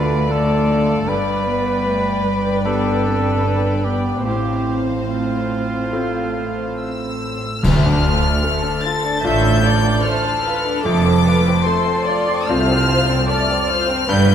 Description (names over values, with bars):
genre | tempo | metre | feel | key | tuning
cinematic, emotional film score for orchestra | 67-78 BPM | 4/4 | rubato | unclear | A4 = 440 Hz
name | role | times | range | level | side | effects
mellow cor anglais | melody | 0.0-7.2 s | F4 to B4 | -24 LUFS | right 2 dB | none
warm symphonic violin section | melody | 0.0-14.3 s | F5 to A6 | -24 LUFS | left 4 dB | none
dark clarinet | second line | 0.0-7.2 s | G3 to D4 | -25 LUFS | left 2 dB | none
warm symphonic violin section | second line | 0.0-14.3 s | G3 to D5 | -24 LUFS | left 3 dB | none
bright concert grand piano | accompaniment | 0.0-14.3 s | D2 to B4 | -24 LUFS | left 3 dB | none
dark symphonic viola section | accompaniment | 0.0-14.3 s | A3 to E5 | -25 LUFS | right 1 dB | none
rich studio double bass section | bass | 0.0-14.3 s | F1 to D2 | -24 LUFS | right 3 dB | none
warm symphonic cello section | bass | 0.0-14.3 s | C2 to D3 | -22 LUFS | right 2 dB | none
clash cymbals and concert bass drum | percussion | 7.6-9.2 s | none | -23 LUFS | equal | none
timpani | percussion | 7.6-8.8 s | D3 | -23 LUFS | equal | none
room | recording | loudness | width
moderate scoring stage reverb, RT60 1.7 s | lossy compression artefacts | -16 LUFS | side -9 dB against mid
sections
0.0-7.6 A section; 7.6-14.3 B section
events
band accent 7.6-8.4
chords
0.0 Dm; 1.1 G; 4.3 F/A; 7.6 Dm; 10.8 F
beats
0.31 | 1.09 1.87 2.65 3.45 | 4.27 5.11 5.93 6.80 | 7.64 8.43 9.23 10.04 | 10.85 11.66 12.49 13.29 | 14.09